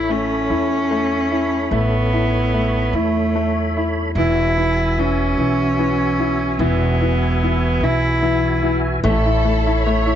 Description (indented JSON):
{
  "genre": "six-eight pop ballad",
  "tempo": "49 BPM (dotted quarters)",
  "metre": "6/8",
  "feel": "straight",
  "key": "A major",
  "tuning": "A4 = 442 Hz",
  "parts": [
    { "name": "warm cello", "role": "melody", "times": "0.0-8.7 s", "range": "A3 to E4", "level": "-20 LUFS", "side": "right 1 dB", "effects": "none" },
    { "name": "bright upright piano", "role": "accompaniment", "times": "0.0-10.2 s", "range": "E3 to E4", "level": "-22 LUFS", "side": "left 3 dB", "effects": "none" },
    { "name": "tonewheel organ", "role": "sustained chords", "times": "0.0-10.2 s", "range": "F#4 to B5", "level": "-26 LUFS", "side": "right 2 dB", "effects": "chorus vibrato, slow rotary speaker" },
    { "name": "upright bass", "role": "bass", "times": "0.0-10.2 s", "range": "E1 to E2", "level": "-21 LUFS", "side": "right 1 dB", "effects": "none" },
    { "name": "warm studio violin section", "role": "second line", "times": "9.0-10.2 s", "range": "A4 to C#5", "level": "-27 LUFS", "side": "equal", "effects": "none" }
  ],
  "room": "light reverb",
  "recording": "nothing above 7.6 kHz",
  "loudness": "-16 LUFS",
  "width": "side -10 dB against mid",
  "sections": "0.0-9.0 A section; 9.0-10.2 B section",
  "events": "none",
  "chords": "0.0 Aadd9; 4.2 Eadd9; 9.0 Aadd9"
}